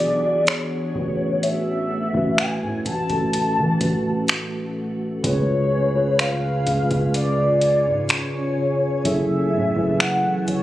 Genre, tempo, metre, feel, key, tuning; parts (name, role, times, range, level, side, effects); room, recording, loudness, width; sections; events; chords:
contemporary R&B; 63 BPM; 4/4; straight; A major; A4 = 440 Hz
mellow horn-like synth lead; melody; 0.0-10.6 s; C#5 to A5; -23 LUFS; left 1 dB; chorus, digital delay
mellow tine electric piano; accompaniment; 0.0-10.6 s; A2 to C#5; -23 LUFS; right 1 dB; slow stereo tremolo
glassy FM pad; sustained chords; 0.0-10.6 s; C#3 to G#5; -30 LUFS; left 1 dB; ensemble chorus, built-in reverb, sidechain pumping
long sustained 808-style bass; bass; 0.0-10.6 s; F#1 to E3; -27 LUFS; equal
booming analog drum machine; drums; 0.5-10.6 s; finger snaps, hi-hat, kick drum; -24 LUFS; equal
light reverb; recorded on a phone in the room, club reverb, compression; -19 LUFS; side -14 dB against mid
0.0-10.6 A section
0.0 E7; 1.0 A6; 5.2 C#7; 9.0 F#m7